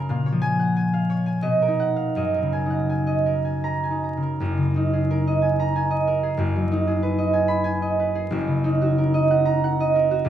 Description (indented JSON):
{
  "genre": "classical, solo harp piece",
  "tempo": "78-95 BPM",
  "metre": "3/4",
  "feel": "rubato",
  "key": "F# major",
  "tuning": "A4 = 444 Hz",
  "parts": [
    { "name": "concert harp", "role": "solo", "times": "0.0-10.3 s", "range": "F#1 to B5", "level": "-20 LUFS", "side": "right 1 dB", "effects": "none" }
  ],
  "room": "moderate stone room reverb, RT60 1.2 s",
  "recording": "vinyl crackle",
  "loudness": "-20 LUFS",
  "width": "side -10 dB against mid",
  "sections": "0.0-4.4 A section; 4.4-10.3 B section",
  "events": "none",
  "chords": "0.1 A#m7; 1.4 Bmaj7; 2.1 F#69; 6.4 G#m7/F#; 8.3 F#6"
}